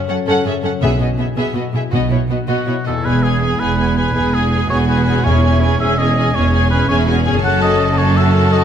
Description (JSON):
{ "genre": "cinematic", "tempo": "110 BPM (dotted quarters)", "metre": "12/8", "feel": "straight", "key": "E major", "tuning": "A4 = 440 Hz", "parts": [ { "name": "concert harp", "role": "arpeggios", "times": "0.0-8.6 s", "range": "E2 to E5", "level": "-23 LUFS", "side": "left 9 dB", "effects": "none" }, { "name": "dark symphonic violin section", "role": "melody", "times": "0.1-8.6 s", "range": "C#5 to A5", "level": "-24 LUFS", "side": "left 2 dB", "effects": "none" }, { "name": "warm symphonic violin section", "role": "second line", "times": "0.1-8.6 s", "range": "C#4 to A4", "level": "-23 LUFS", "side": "left 2 dB", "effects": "none" }, { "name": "clear symphonic viola section", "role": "accompaniment", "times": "0.1-8.6 s", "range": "B3 to G#4", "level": "-23 LUFS", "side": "right 1 dB", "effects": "none" }, { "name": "rich symphonic cello section", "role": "bass", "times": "0.1-8.6 s", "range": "E2 to B2", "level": "-20 LUFS", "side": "right 1 dB", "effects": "none" }, { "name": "warm symphonic double bass section", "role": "bass", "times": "0.8-8.6 s", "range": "E1 to B1", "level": "-18 LUFS", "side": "right 3 dB", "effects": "none" }, { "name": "timpani", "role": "percussion", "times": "0.8-5.8 s", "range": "E2 to B2", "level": "-22 LUFS", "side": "right 1 dB", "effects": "none" }, { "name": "warm oboe", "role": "second line", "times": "2.5-8.6 s", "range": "F#4 to F#5", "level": "-21 LUFS", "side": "right 1 dB", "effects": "none" } ], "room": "moderate scoring stage reverb, RT60 1.7 s", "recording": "none", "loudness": "-13 LUFS", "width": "side -8 dB against mid", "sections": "0.0-3.1 A section; 3.1-8.6 B section", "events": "build-up 0.0-3.1", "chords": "0.0 F#m; 0.8 E/B; 1.9 B; 3.1 E; 5.3 C#m/E; 7.4 F#m" }